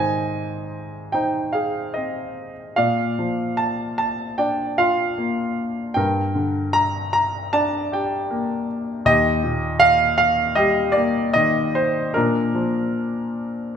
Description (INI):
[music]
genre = classical, lyrical solo piano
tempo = 77 BPM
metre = 4/4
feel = uneven beats, rubato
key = Bb major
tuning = A4 = 441 Hz
[part]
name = clear concert grand piano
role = solo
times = 0.0-13.8 s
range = Eb2 to Bb5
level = -19 LUFS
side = equal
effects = none
[sound]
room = moderate scoring stage reverb, RT60 1.7 s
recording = minimal, uncompressed stereo recording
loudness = -19 LUFS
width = side -8 dB against mid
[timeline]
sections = 0.0-13.8 A section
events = none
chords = 0.0 Ab; 2.8 Bb; 6.0 Gm; 9.1 Eb; 12.2 Bb